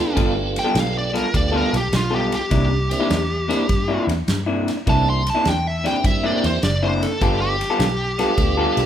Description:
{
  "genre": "electric blues shuffle",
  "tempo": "102 BPM",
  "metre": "4/4",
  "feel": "swing 68% on 8ths",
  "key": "G mixolydian",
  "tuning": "A4 = 439 Hz",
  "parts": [
    { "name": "smooth overdriven lead guitar", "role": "melody", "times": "0.0-8.9 s", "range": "F4 to C6", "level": "-23 LUFS", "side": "equal", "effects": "none" },
    { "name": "tonewheel organ", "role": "accompaniment", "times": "0.0-8.9 s", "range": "A3 to Bb4", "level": "-26 LUFS", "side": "right 3 dB", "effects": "slow rotary speaker, overdrive" },
    { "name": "electric guitar through a small old amp", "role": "riff", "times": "0.1-8.8 s", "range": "C3 to A4", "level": "-23 LUFS", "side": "left 2 dB", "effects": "none" },
    { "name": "fingered electric bass", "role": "bass", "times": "0.2-8.9 s", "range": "F#1 to G2", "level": "-24 LUFS", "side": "right 1 dB", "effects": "none" },
    { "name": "natural country drum kit", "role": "drums", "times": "0.2-8.9 s", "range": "kick drum, ride cymbal, snare drum", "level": "-25 LUFS", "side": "equal", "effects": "none" }
  ],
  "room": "light reverb",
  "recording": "band playing live in one room",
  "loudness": "-17 LUFS",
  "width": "side -10 dB against mid",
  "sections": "0.0-8.9 A section",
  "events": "lead electric guitar solo 0.0-8.9",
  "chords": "0.0 G9; 2.5 C9; 7.2 G9"
}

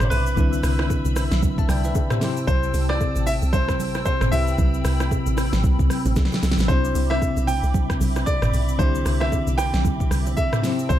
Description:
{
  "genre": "amapiano",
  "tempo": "114 BPM",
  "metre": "4/4",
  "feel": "swing 58% on 16ths",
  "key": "C major",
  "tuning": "A4 = 441 Hz",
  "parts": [
    { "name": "clear concert grand piano", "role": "melody", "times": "0.0-11.0 s", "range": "B4 to G5", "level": "-27 LUFS", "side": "equal", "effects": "digital delay" },
    { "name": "bell-like tine electric piano", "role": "accompaniment", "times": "0.0-11.0 s", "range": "C3 to A5", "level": "-27 LUFS", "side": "left 4 dB", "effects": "fast stereo tremolo" },
    { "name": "hollow soft pad", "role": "sustained chords", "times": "0.0-11.0 s", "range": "C4 to E6", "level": "-31 LUFS", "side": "right 1 dB", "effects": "ensemble chorus, sidechain pumping" },
    { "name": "deep log drum bass", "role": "bass", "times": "0.0-11.0 s", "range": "G1 to C2", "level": "-22 LUFS", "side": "equal", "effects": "none" },
    { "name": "smooth R&B drum kit", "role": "drums", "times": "0.0-11.0 s", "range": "hi-hat, kick drum, rim click, shaker, snare drum, toms", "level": "-24 LUFS", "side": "equal", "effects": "none" },
    { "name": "bongos and congas", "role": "percussion", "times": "0.0-11.0 s", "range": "none", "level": "-32 LUFS", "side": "right 8 dB", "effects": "none" }
  ],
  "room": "little or no reverb",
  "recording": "dark, warm production",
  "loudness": "-19 LUFS",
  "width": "side -12 dB against mid",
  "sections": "0.0-11.0 A section",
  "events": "drum fill 6.2-6.7",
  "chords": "0.0 Cmaj9; 2.2 Am7; 6.7 Cmaj9"
}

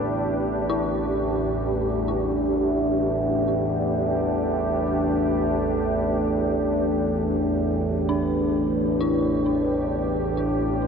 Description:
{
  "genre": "dark ambient drone",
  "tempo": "free time",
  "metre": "none",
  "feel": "none",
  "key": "unclear",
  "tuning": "A4 = 440 Hz",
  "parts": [
    { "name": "deep dark ambient pad", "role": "sustained chords", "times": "0.0-10.9 s", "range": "A3 to B4", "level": "-25 LUFS", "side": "left 1 dB", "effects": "chorus, built-in reverb" },
    { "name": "dark detuned synth bell", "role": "arpeggios", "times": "0.0-10.9 s", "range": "D4 to E4", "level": "-32 LUFS", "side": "left 1 dB", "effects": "chorus, phaser, ping-pong delay" },
    { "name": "overtone-sweeping drone", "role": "drone", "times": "0.0-10.9 s", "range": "A1 to E2", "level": "-24 LUFS", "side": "right 2 dB", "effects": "chorus, built-in reverb" },
    { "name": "quartz singing bowl", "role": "texture", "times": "0.0-10.9 s", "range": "none", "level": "barely audible", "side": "none", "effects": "none" }
  ],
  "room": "wet huge ambient reverb, RT60 9.3 s",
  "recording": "none",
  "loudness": "-21 LUFS",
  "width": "side -6 dB against mid",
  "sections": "0.0-10.9 A section",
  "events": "none",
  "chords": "0.0 Asus2"
}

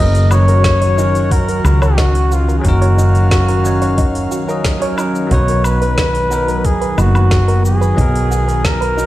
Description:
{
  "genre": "sunset chillout",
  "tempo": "90 BPM",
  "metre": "4/4",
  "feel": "straight",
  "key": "F# major",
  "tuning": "A4 = 440 Hz",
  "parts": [
    { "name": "warm flugelhorn", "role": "melody", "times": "0.0-9.1 s", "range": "E#4 to D#5", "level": "-19 LUFS", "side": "left 1 dB", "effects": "digital delay" },
    { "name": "bell-like tine electric piano", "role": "accompaniment", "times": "0.0-9.1 s", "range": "F#3 to D#5", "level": "-21 LUFS", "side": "equal", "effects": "auto-pan, digital delay" },
    { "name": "airy breathy pad", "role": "sustained chords", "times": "0.0-9.1 s", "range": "D#3 to E#5", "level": "-23 LUFS", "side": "right 2 dB", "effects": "chorus" },
    { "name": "soft round pluck", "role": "arpeggios", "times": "0.0-9.1 s", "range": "D#4 to C#5", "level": "-26 LUFS", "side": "right 2 dB", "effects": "chorus, digital delay" },
    { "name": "woody fretless electric bass", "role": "bass", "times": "0.0-9.1 s", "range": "F#1 to C#2", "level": "-14 LUFS", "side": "equal", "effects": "none" },
    { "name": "smooth R&B drum kit", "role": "drums", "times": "0.1-9.1 s", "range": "hi-hat, shaker, snare drum, woodblock", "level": "-24 LUFS", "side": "equal", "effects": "studio reverb" },
    { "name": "electronic kick drum", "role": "drums", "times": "0.6-8.8 s", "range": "none", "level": "-17 LUFS", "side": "equal", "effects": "studio reverb" }
  ],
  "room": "light reverb",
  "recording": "played on a big sound system in a bare room, stone room reverb",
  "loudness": "-11 LUFS",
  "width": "side -15 dB against mid",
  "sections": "0.0-9.1 A section",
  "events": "none",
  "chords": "0.0 F#6; 5.3 Bmaj7"
}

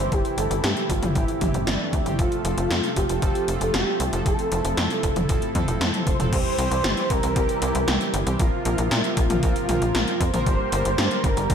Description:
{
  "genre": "synthwave",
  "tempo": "116 BPM",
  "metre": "4/4",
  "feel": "straight",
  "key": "unclear",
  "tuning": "A4 = 440 Hz",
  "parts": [
    { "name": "expressive portamento lead", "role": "melody", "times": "0.0-11.5 s", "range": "D4 to C5", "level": "-27 LUFS", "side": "right 1 dB", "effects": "ensemble chorus, slapback echo, tape echo" },
    { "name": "soft supersaw", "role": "sustained chords", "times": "0.0-11.5 s", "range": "C3 to G4", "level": "-31 LUFS", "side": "equal", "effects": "sidechain pumping" },
    { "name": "analog synth brass", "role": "stabs", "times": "0.0-11.5 s", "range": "E3 to Bb4", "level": "-31 LUFS", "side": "right 3 dB", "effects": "chorus, slapback echo, tape echo" },
    { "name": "tight sequencer bass", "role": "bass", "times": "0.0-11.5 s", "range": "F1 to Bb2", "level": "-26 LUFS", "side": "equal", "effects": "none" },
    { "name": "80s electronic pad drums", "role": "drums", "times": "0.1-11.5 s", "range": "crash cymbal, hi-hat, snare drum, toms", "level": "-27 LUFS", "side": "left 1 dB", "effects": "gated reverb on snare and toms, overdrive, studio reverb" },
    { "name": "electronic kick drum", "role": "drums", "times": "0.1-11.5 s", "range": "none", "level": "-25 LUFS", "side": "equal", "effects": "overdrive, studio reverb" }
  ],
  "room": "moderate lush hall reverb, RT60 1.7 s",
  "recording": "big arena sound",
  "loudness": "-20 LUFS",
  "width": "side -7 dB against mid",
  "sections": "0.0-6.3 A section; 6.3-11.5 B section",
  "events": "drum fill 5.8-6.3",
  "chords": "0.0 C/G; 2.2 F; 6.3 C; 8.4 Bbsus2; 10.5 Gm"
}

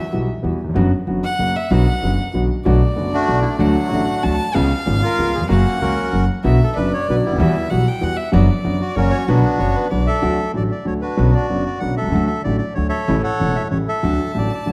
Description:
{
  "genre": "tango",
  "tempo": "190 BPM",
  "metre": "3/4",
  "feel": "rubato",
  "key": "B minor, D major from 10.2 s",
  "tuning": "A4 = 438 Hz",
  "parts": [
    { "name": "warm violin", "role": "second line", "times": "0.0-10.2, 14.0-14.7 s", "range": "B4 to A5", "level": "-28 LUFS", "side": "equal", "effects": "none" },
    { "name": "warm concert grand piano", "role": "accompaniment", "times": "0.1-14.7 s", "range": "E1 to F#4", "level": "-22 LUFS", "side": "equal", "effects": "none" },
    { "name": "upright bass", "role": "bass", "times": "0.1-14.7 s", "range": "E1 to E2", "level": "-22 LUFS", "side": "equal", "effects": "none" },
    { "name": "bandoneon", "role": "melody", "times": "3.1-14.7 s", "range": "F#3 to F#5", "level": "-24 LUFS", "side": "equal", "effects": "none" }
  ],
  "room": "moderate scoring stage reverb, RT60 1.7 s",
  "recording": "none",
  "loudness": "-18 LUFS",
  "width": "mono",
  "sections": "0.0-2.7 A section; 2.7-10.2 A section; 10.2-14.7 B section",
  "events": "violin solo 0.0-2.7",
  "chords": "0.0 Emadd9; 0.8 Bm/F#; 1.4 F#; 1.7 Bm; 2.7 Bm7; 3.6 D; 4.5 C#7; 5.5 F#; 6.4 Bm; 7.4 Emadd9; 8.3 Bm/F#; 9.0 F#; 9.3 Bm; 10.2 D; 11.2 Bmadd9; 12.1 D; 13.1 A; 14.0 D"
}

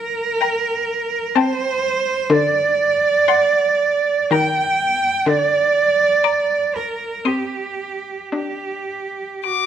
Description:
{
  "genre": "classical, slow romantic movement for string quartet",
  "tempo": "53-65 BPM",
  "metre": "3/4",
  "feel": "rubato",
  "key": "unclear",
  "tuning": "A4 = 440 Hz",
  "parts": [
    { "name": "rich viola", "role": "accompaniment", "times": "0.0-9.2 s", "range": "D3 to D4", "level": "-20 LUFS", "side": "left 3 dB", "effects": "none" },
    { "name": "rich cello", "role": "bass", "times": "0.0-9.7 s", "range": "F#4 to G5", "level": "-18 LUFS", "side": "right 4 dB", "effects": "none" },
    { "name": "warm violin", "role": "melody", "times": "0.4-9.7 s", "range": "A5 to Eb6", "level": "-23 LUFS", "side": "left 15 dB", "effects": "none" },
    { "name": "warm violin", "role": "second line", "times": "0.4-9.7 s", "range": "F#5 to D6", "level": "-25 LUFS", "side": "left 10 dB", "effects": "none" }
  ],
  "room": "light reverb",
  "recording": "none",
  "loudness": "-16 LUFS",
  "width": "side -9 dB against mid",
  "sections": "0.0-9.7 A section",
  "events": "none",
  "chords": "0.0 Eb; 1.4 Am7/C; 2.3 D7; 4.3 Eb; 5.3 Bb/D; 7.3 Cm; 8.3 D"
}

